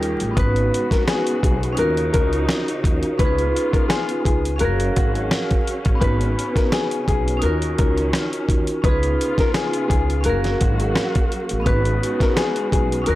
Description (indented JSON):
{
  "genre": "hip hop, boom-bap hip-hop",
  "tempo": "85 BPM",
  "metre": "4/4",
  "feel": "swing 55% on 16ths",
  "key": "G# dorian",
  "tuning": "A4 = 441 Hz",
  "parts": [
    { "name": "vibraphone with medium hard mallets", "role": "accompaniment", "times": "0.0-13.2 s", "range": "G3 to E#5", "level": "-23 LUFS", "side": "right 1 dB", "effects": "cassette tape, high-pass filter, low-pass filter" },
    { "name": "warm studio string section", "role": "sustained chords", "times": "0.0-13.2 s", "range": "C#3 to G4", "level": "-30 LUFS", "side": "left 1 dB", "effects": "high-pass filter, low-pass filter" },
    { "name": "upright bass", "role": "bass", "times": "0.0-13.2 s", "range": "F#1 to D#2", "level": "-23 LUFS", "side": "equal", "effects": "tube saturation" },
    { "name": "dusty soul sampler-style drum kit", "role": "drums", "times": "0.0-13.2 s", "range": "hi-hat, kick drum, rim click, snare drum", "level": "-20 LUFS", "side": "equal", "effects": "none" },
    { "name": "nylon-string guitar", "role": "melody", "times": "0.4-13.2 s", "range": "F#4 to B4", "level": "-25 LUFS", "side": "left 3 dB", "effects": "high-pass filter, low-pass filter, tape echo" }
  ],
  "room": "small room reverb",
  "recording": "dry, gritty hardware recording, transformer saturation, vinyl crackle",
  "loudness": "-17 LUFS",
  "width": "side -16 dB against mid",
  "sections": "0.4-13.2 A section",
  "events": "break 0.0-0.4",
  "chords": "0.4 G#m7; 1.8 D#m7; 3.2 C#7; 4.6 F#maj7; 6.0 G#m7; 7.4 D#m7; 8.8 C#7; 10.2 F#maj7; 11.7 G#m7"
}